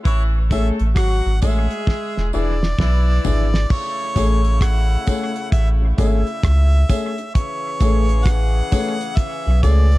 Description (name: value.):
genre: roots reggae.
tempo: 66 BPM.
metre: 4/4.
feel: swing 63% on 16ths.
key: A major.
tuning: A4 = 442 Hz.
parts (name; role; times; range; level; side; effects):
clear horn section; second line; 0.0-10.0 s; C#3 to A4; -29 LUFS; left 2 dB; dub echo.
clear harmonica; melody; 0.1-10.0 s; C#5 to F#5; -27 LUFS; equal; dub echo.
soft dub sub bass; bass; 0.1-10.0 s; E1 to C#2; -16 LUFS; equal; none.
damped 70s drum kit; drums; 0.1-10.0 s; crash cymbal, hi-hat, kick drum, rim click, snare drum, toms; -19 LUFS; equal; none.
warm grand piano; stabs; 0.5-9.8 s; A3 to G#4; -25 LUFS; left 4 dB; none.
tambourine; percussion; 0.5-9.9 s; none; -39 LUFS; right 10 dB; none.
room: little or no reverb.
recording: dark, warm production.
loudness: -16 LUFS.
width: side -18 dB against mid.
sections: 0.0-3.7 A section; 3.7-10.0 B section.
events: drum fill 1.9-3.7.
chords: 0.0 Amaj7; 1.9 E7; 3.7 Amaj7.